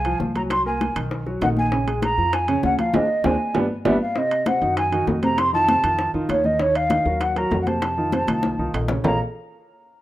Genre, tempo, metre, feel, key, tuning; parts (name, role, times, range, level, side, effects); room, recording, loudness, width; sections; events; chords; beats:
Afro-Cuban jazz; 197 BPM; 4/4; straight; Bb minor; A4 = 440 Hz
mellow hollow jazz flute; melody; 0.0-9.2 s; Db5 to C6; -22 LUFS; equal; plate reverb
upright bass; bass; 0.0-9.2 s; G1 to Gb2; -28 LUFS; left 1 dB
bongos; percussion; 0.0-9.1 s; -29 LUFS; left 4 dB
timbales; percussion; 0.0-9.1 s; -29 LUFS; right 3 dB
warm concert grand piano; accompaniment; 0.1-9.2 s; C3 to F5; -25 LUFS; right 2 dB
congas; percussion; 0.1-9.1 s; -27 LUFS; left 2 dB
moderate studio reverb, RT60 0.6 s; rough home demo mix; -19 LUFS; side -14 dB against mid
0.0-4.2 A section; 4.2-9.0 B section
band accent 2.9-4.2; drum fill 3.2-4.2, 8.3-9.0
0.0 Fm; 0.5 Cm7b5; 1.1 B; 1.7 Bbm7; 2.9 Ab; 3.5 G; 4.2 Cdim; 5.4 F7; 6.6 Ebmadd9; 7.8 F7; 9.0 Bbm7
0.20 | 0.50 0.81 1.11 1.42 | 1.72 2.02 2.33 2.63 | 2.94 3.24 3.55 3.85 | 4.16 4.46 4.77 5.07 | 5.38 5.68 5.99 6.29 | 6.60 6.90 7.21 7.51 | 7.82 8.13 8.43 8.74 | 9.05